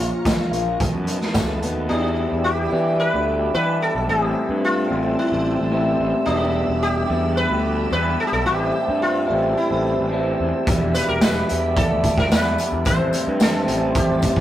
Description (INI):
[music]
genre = psychedelic rock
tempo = 110 BPM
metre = 4/4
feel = straight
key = unclear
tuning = A4 = 440 Hz
[part]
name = sitar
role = melody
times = 0.0-14.4 s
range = D4 to C5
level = -24 LUFS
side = left 1 dB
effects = none
[part]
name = ensemble organ-string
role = sustained chords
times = 0.0-14.4 s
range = F4 to E6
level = -30 LUFS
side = right 2 dB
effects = ensemble chorus
[part]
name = electric guitar through a small old amp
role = riff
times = 0.0-14.4 s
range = E2 to F4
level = -22 LUFS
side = equal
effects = phaser
[part]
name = fuzz picked electric bass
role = bass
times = 0.0-14.4 s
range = E1 to E3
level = -25 LUFS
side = equal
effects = overdrive
[part]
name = raw garage drum kit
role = drums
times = 0.3-1.8, 10.7-14.4 s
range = hi-hat, kick drum, snare drum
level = -20 LUFS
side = equal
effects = none
[part]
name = tambourine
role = percussion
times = 0.3-1.5, 10.7-14.3 s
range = none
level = -38 LUFS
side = left 5 dB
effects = none
[sound]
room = moderate small room reverb, RT60 0.6 s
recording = rough rehearsal-room recording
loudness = -18 LUFS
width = side -12 dB against mid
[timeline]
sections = 0.0-1.9 A section; 1.9-14.4 B section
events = none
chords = 0.0 Bbm; 0.8 B7; 1.9 Em7; 4.1 Am7; 6.3 Em7; 8.5 Am7; 10.7 Em7; 12.8 Am7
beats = 0.25 0.80 1.35 | 1.90 2.44 2.99 3.54 | 4.09 4.63 5.18 5.73 | 6.28 6.82 7.37 7.92 | 8.47 9.02 9.56 10.11 | 10.66 11.21 11.75 12.30 | 12.85 13.40 13.95